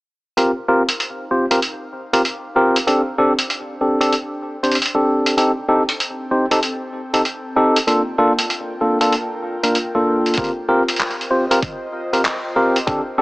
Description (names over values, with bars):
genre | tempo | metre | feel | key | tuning
glitch hop | 96 BPM | 4/4 | swing 64% on 16ths | unclear | A4 = 440 Hz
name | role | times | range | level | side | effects
tine electric piano | stabs | 0.4-13.2 s | Bb3 to C5 | -17 LUFS | equal | sidechain pumping, low-pass filter, digital delay
boom bap sampler-style drum kit | drums | 0.4-13.0 s | handclaps, hi-hat | -20 LUFS | equal | none
airy breathy pad | texture | 1.2-13.2 s | C4 to G5 | -30 LUFS | equal | chorus, sidechain pumping
electronic kick drum | drums | 10.4-13.0 s | none | -26 LUFS | equal | overdrive
room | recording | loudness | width
moderate lush hall reverb, RT60 2.2 s | small speaker sound | -16 LUFS | side -24 dB against mid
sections
0.4-13.2 A section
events
fade-in on analog synth pad 0.4-13.2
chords
0.4 Eb69; 2.9 D7sus4; 5.4 Am7b5; 7.9 Gm9; 10.4 Eb69